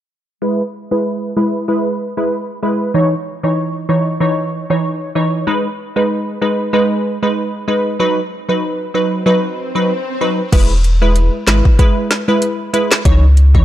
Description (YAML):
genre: dancehall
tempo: 95 BPM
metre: 4/4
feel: swing 56% on 16ths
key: unclear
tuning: A4 = 440 Hz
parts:
  - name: wavetable chord stab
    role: accompaniment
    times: 0.4-13.6 s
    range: E3 to C#5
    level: -15 LUFS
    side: equal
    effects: sidechain pumping, low-pass filter
  - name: swell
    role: sound effects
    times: 9.1-10.5 s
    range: none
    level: -27 LUFS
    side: left 1 dB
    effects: none
  - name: saturated sub bass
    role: bass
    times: 10.5-13.6 s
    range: E1 to C#2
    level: -10 LUFS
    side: equal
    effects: none
  - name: afro-pop drum kit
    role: drums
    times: 10.5-13.6 s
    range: crash cymbal, handclaps, hi-hat, kick drum, snare drum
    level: -13 LUFS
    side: equal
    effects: overdrive
room: light reverb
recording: dark, warm production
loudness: -13 LUFS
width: side -12 dB against mid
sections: 0.4-10.5 A section; 10.5-13.6 B section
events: filter sweep on synth stab 0.4-10.5; swell 9.1-10.5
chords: 0.4 E; 2.9 C#madd9; 5.5 G#m; 8.0 B; 10.5 E; 13.1 C#madd9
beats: | 0.42 1.05 1.68 2.31 | 2.95 3.58 4.21 4.84 | 5.47 6.11 6.74 7.37 | 8.00 8.63 9.26 9.89 | 10.53 11.16 11.79 12.42 | 13.05